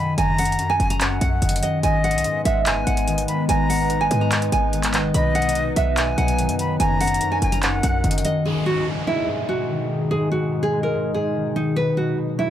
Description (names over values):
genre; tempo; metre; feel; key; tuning
hip hop, trap; 145 BPM; 4/4; half-time; G# minor; A4 = 439 Hz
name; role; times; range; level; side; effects
nylon-string guitar; melody; 0.0-12.5 s; D#4 to B5; -25 LUFS; right 2 dB; tape echo
silver concert flute; second line; 0.0-8.4 s; D#5 to B5; -26 LUFS; left 2 dB; tape echo
concert harp; accompaniment; 0.0-12.5 s; F#2 to G#3; -24 LUFS; left 2 dB; none
short 808-style bass; bass; 0.0-8.2 s; F#1 to G#2; -23 LUFS; equal; none
booming analog drum machine; drums; 0.2-8.3 s; handclaps, hi-hat; -25 LUFS; equal; none
warbly tape-like pad; sustained chords; 2.2-12.5 s; B2 to B4; -28 LUFS; equal; chorus, built-in reverb
downlifter; sound effects; 8.5-11.8 s; none; -33 LUFS; equal; none
room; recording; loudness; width
little or no reverb; dry, gritty hardware recording; -18 LUFS; side -11 dB against mid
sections
0.0-8.5 A section; 8.5-12.5 B section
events
none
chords
0.2 F#6; 1.8 G#m; 5.1 B; 6.8 F#6; 8.5 G#m; 11.8 B